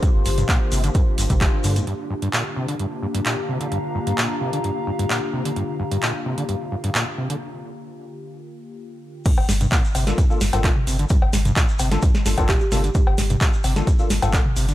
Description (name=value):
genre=acid house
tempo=130 BPM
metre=4/4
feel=straight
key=G minor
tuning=A4 = 440 Hz
part: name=warm analog pad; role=sustained chords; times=0.0-9.2 s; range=D3 to C5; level=-31 LUFS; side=left 2 dB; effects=chorus, sidechain pumping
part: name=overdriven acid bass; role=riff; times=0.0-14.7 s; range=G2 to G3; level=-26 LUFS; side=equal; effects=lush chorus, vintage 12-bit sampler grit, sidechain pumping, tape echo
part: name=booming analog drum machine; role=drums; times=0.0-14.7 s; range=cowbell, crash cymbal, handclaps, hi-hat, snare drum, toms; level=-25 LUFS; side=equal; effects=overdrive
part: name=electronic kick drum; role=drums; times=0.0-1.5, 9.3-14.4 s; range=none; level=-19 LUFS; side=equal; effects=none
part: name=shekere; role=percussion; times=0.0-1.9, 9.3-14.7 s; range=none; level=-34 LUFS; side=left 2 dB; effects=none
part: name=warbly tape-like pad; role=texture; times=0.0-7.4 s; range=D4 to C6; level=-30 LUFS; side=left 2 dB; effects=chorus, built-in reverb, phaser, sidechain pumping
part: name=warm sub bass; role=bass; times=0.1-1.8, 9.4-14.7 s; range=G1 to G2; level=-22 LUFS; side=equal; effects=tube saturation, sidechain pumping
part: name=bell-like tine electric piano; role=stabs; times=10.1-14.4 s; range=Bb3 to A4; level=-29 LUFS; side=left 3 dB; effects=ensemble chorus, tape echo
part: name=kalimba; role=melody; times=12.5-12.7 s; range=G4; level=-30 LUFS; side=right 3 dB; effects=tape echo
room=light reverb, digital ambience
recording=none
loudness=-18 LUFS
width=side -14 dB against mid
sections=0.0-1.9 A section; 1.9-9.3 B section; 9.3-14.7 C section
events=filter sweep on analog synth pad 1.9-9.3; break 7.4-9.3; drop 9.3-14.7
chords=0.0 Gm7